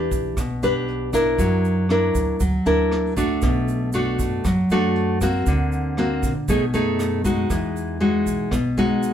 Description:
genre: bossa nova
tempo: 118 BPM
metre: 4/4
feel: straight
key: unclear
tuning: A4 = 440 Hz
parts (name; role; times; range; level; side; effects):
- nylon-string guitar; accompaniment; 0.0-9.1 s; B2 to B4; -20 LUFS; equal; none
- upright bass; bass; 0.0-9.0 s; A#1 to F#2; -27 LUFS; equal; none
- vintage brush drum kit; drums; 0.1-9.1 s; hi-hat, kick drum, rim click; -28 LUFS; right 1 dB; none
- tube shaker; percussion; 0.1-9.1 s; none; -39 LUFS; right 9 dB; none
room: moderate studio reverb, RT60 0.7 s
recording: band playing live in one room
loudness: -19 LUFS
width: side -9 dB against mid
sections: 0.0-7.5 A section; 7.5-9.1 B section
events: none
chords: 0.0 Em7; 1.4 F#7alt; 3.4 Bm7; 5.5 Daug7; 6.5 B6; 7.5 Emaj9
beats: 0.37 0.88 | 1.39 1.90 2.40 2.91 | 3.42 3.93 4.44 4.95 | 5.46 5.97 6.48 6.99 | 7.50 8.01 8.52 9.03

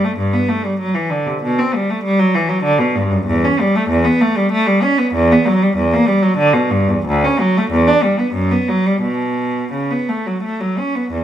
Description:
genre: classical, baroque-style suite movement for unaccompanied cello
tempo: 84-99 BPM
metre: 3/4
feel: rubato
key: B minor from 3.3 s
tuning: A4 = 442 Hz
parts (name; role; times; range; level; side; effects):
- rich cello; solo; 0.0-11.2 s; D2 to D4; -14 LUFS; equal; none
room: moderate stone room reverb, RT60 1.3 s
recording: none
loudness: -14 LUFS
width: side -10 dB against mid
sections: 0.0-11.1 A section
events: none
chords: none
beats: 0.17 0.78 | 1.40 2.03 2.63 | 3.26 3.90 4.52 | 5.14 5.77 6.39 | 7.05 7.71 8.35 | 9.03 9.73 10.43 | 11.11

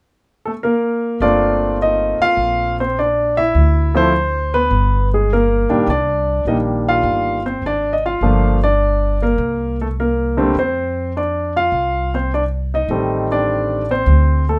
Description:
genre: jazz piano trio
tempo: 103 BPM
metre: 4/4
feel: swing 68% on 8ths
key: G minor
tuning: A4 = 440 Hz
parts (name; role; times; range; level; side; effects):
- clear concert grand piano; melody; 0.5-14.6 s; D3 to F5; -19 LUFS; equal; none
- upright bass; bass; 1.2-14.6 s; G1 to F2; -21 LUFS; equal; none
room: light reverb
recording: none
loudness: -17 LUFS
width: mono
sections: 0.0-1.2 A section; 1.2-14.6 B section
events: none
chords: 0.0 N.C.; 1.2 Gm11; 3.5 D7(no3); 4.7 G; 5.9 Cm9; 8.2 Gm7; 9.4 N.C.; 10.5 F5; 12.9 Am7b5; 14.1 D7(no3)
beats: 0.04 0.62 | 1.21 1.79 2.37 2.96 | 3.54 4.12 4.71 5.29 | 5.87 6.46 7.04 7.62 | 8.21 8.79 9.38 9.96 | 10.55 11.13 11.72 12.30 | 12.89 13.48 14.06

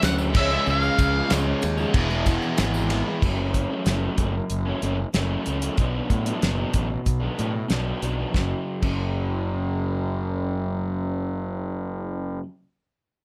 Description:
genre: classic rock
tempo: 94 BPM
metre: 4/4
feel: straight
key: F# minor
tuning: A4 = 440 Hz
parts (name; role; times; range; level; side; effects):
- octave-fuzz lead guitar; melody; 0.0-1.3 s; E5 to F#5; -27 LUFS; equal; distortion, digital delay
- biting overdriven guitar; riff; 0.0-3.2 s; E2 to C#4; -29 LUFS; equal; none
- crunchy overdriven guitar; riff; 0.0-12.4 s; F#2 to E4; -30 LUFS; equal; none
- fuzz fingered electric bass; bass; 0.0-12.4 s; E1 to A2; -29 LUFS; equal; overdrive
- damped 70s drum kit; drums; 0.0-9.0 s; crash cymbal, hi-hat, kick drum, ride cymbal, snare drum; -27 LUFS; equal; none
- tambourine; percussion; 0.0-3.0 s; none; -44 LUFS; equal; none
room: light reverb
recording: none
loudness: -25 LUFS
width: mono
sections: 0.0-3.2 A section; 3.2-8.3 B section; 8.3-10.9 C section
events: none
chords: 0.4 C#; 1.9 E; 3.2 F#m; 5.8 Bm7; 8.3 F#5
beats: 0.03 | 0.67 1.31 1.95 2.58 | 3.22 3.86 4.50 5.14 | 5.78 6.42 7.06 7.70 | 8.34 8.99 9.63 10.27

